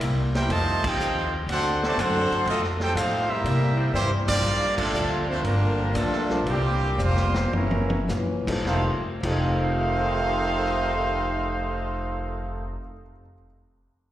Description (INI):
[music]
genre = jazz, big band swing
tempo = 103-122 BPM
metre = 4/4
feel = swing 69% on 8ths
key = F major, F mixolydian from 4.4 s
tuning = A4 = 440 Hz
[part]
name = picked swing-style acoustic guitar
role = accompaniment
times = 0.0-12.9 s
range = Gb2 to A4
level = -34 LUFS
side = left 4 dB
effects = slapback echo
[part]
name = upright bass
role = bass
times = 0.0-12.7 s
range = F1 to C3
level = -27 LUFS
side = equal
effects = none
[part]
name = vintage drum kit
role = drums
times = 0.0-9.5 s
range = crash cymbal, hi-hat, kick drum, ride cymbal, snare drum, toms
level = -32 LUFS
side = equal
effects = none
[part]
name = bright trumpet section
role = melody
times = 0.3-12.8 s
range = Gb3 to A5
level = -26 LUFS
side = right 1 dB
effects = slapback echo
[part]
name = warm trombone section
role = second line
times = 0.3-12.8 s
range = F2 to G4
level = -31 LUFS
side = right 2 dB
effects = slapback echo
[part]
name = dark saxophone section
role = sustained chords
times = 0.5-3.9 s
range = F3 to C5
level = -36 LUFS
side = equal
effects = none
[part]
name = clear baby grand piano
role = accompaniment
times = 6.3-13.5 s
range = F2 to Eb7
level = -32 LUFS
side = left 1 dB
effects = none
[sound]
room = light reverb, studio reverb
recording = live gig heard through the venue's PA, recital hall reverb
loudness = -22 LUFS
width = side -13 dB against mid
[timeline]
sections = 0.0-4.4 A section; 4.4-8.7 B section; 8.7-13.3 C section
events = band accent 0.7, 4.2, 4.7; drum fill 4.0-4.4, 7.0-8.1; slowing down 4.4-8.7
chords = 0.5 F7; 1.5 D7; 2.5 F7; 3.5 C7; 4.4 Bb6; 5.4 Gm7; 6.5 C7sus4; 7.5 Gb7; 8.7 F9